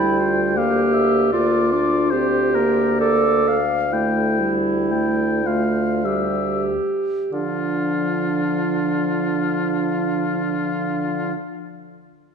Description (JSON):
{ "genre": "classical, slow romantic movement for wind quintet", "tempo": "45-80 BPM", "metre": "3/4", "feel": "rubato", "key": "D minor", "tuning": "A4 = 440 Hz", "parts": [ { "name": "warm oboe", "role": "second line", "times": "0.0-11.3 s", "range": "F4 to G5", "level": "-24 LUFS", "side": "left 6 dB", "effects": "none" }, { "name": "clear clarinet", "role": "accompaniment", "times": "0.0-11.3 s", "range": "D4 to A4", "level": "-21 LUFS", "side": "right 3 dB", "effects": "none" }, { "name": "warm French horn", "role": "accompaniment", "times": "0.0-11.3 s", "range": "F3 to D4", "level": "-25 LUFS", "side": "left 1 dB", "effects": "none" }, { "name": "warm bassoon", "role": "bass", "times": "0.0-11.3 s", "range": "D2 to D3", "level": "-26 LUFS", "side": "right 2 dB", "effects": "none" } ], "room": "wet concert hall reverb, RT60 2.0 s", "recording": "nothing above 10.9 kHz", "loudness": "-18 LUFS", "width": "side -6 dB against mid", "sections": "0.0-7.3 A section; 7.3-11.2 B section", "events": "slowing down 0.2-7.3", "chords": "0.0 Gm/D; 3.9 A5/D; 7.3 Dm" }